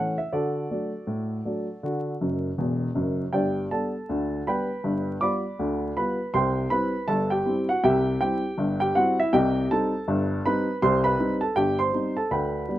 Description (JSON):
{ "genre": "ragtime piano", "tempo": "80 BPM", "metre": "2/4", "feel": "swing 60% on 16ths", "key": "D major", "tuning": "A4 = 437 Hz", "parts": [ { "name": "warm upright piano", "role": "solo", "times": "0.0-12.8 s", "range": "E1 to D6", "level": "-23 LUFS", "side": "equal", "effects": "none" } ], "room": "light reverb", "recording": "rough home demo mix, vinyl crackle", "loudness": "-23 LUFS", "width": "side -14 dB against mid", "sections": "0.0-3.3 A section; 3.3-12.8 B section", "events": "upright piano fill 2.2-3.3", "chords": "0.3 D; 3.3 G; 4.8 G7; 6.3 C; 9.3 Cm" }